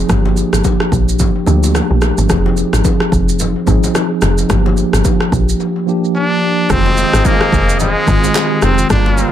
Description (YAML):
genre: afrobeats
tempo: 109 BPM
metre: 4/4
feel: swing 58% on 16ths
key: F dorian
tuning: A4 = 440 Hz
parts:
  - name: mellow tine electric piano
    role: accompaniment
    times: 0.0-9.3 s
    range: D3 to Ab4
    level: -16 LUFS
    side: right 1 dB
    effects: medium stereo tremolo, tape echo
  - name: woody log drum bass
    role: bass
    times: 0.0-9.2 s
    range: F1 to D2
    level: -15 LUFS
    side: equal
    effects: none
  - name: deep house drum kit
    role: drums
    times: 0.1-9.3 s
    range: handclaps, kick drum, rim click, shaker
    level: -16 LUFS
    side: equal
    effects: none
  - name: congas and bongos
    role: percussion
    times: 0.1-9.3 s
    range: none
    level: -25 LUFS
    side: left 6 dB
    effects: tape echo
  - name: bright trumpet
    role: melody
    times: 6.2-9.3 s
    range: Ab3 to D4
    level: -16 LUFS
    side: equal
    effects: tape echo
  - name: clear horn section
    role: second line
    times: 6.7-9.3 s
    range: F3 to Bb4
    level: -21 LUFS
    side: left 3 dB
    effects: tape echo
room: light reverb, studio ambience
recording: echo-heavy mix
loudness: -11 LUFS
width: side -11 dB against mid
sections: 0.0-6.7 A section; 6.7-9.3 B section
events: break 5.6-6.7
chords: 0.1 Gm7; 2.3 Fm7; 4.5 Gm7; 6.7 Fm7